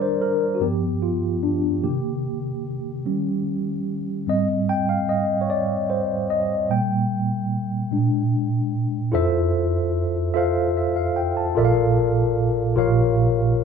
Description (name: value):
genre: gospel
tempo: 49 BPM (dotted quarters)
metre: 6/8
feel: straight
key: Eb major, F major from 9.1 s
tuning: A4 = 440 Hz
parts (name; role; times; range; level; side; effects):
- mellow tine electric piano; solo; 0.0-13.6 s; Bb1 to A5; -20 LUFS; equal; medium stereo tremolo
room: wet studio reverb, RT60 0.7 s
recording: band playing live in one room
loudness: -20 LUFS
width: side -6 dB against mid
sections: 0.0-9.1 A section; 9.1-13.6 B section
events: tine electric piano solo 0.0-9.1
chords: 0.0 Ebmaj7; 0.6 G7; 1.8 Cm7; 3.1 Eb7; 4.3 Abmaj7; 6.7 Gm/Bb; 7.9 Bb6; 9.1 Fmaj7; 11.6 Bbmaj7; 12.8 Bbm6